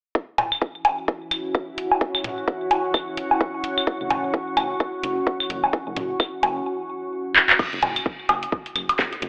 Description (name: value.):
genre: minimal techno.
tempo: 129 BPM.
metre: 4/4.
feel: swing 59% on 16ths.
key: unclear.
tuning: A4 = 440 Hz.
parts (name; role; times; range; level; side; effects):
electronic kick drum; drums; 0.1-9.1 s; none; -25 LUFS; equal; high-pass filter on kick, small room ambience.
deep dark ambient pad; texture; 1.0-6.7 s; C#4 to C#6; -31 LUFS; equal; chorus, built-in reverb, sidechain pumping.
swarming drone; texture; 1.0-6.7 s; E3 to E4; -38 LUFS; equal; built-in reverb, sidechain pumping.
house drum kit; drums; 0.4-9.3 s; crash cymbal, handclaps, hi-hat, snare drum; -22 LUFS; equal; small room ambience.
electronic toms, woodblock and claves; percussion; 0.4-9.0 s; none; -24 LUFS; equal; small room ambience, digital delay.
rubbery square bass; bass; 4.0-9.3 s; F#1; -38 LUFS; equal; sidechain pumping.
room: wet lush hall reverb, RT60 1.8 s, digital ambience.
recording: telephone sound.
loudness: -23 LUFS.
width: mono.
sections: 0.2-7.6 A section; 7.6-9.3 B section.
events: drum fill 7.4.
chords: 0.2 F#5.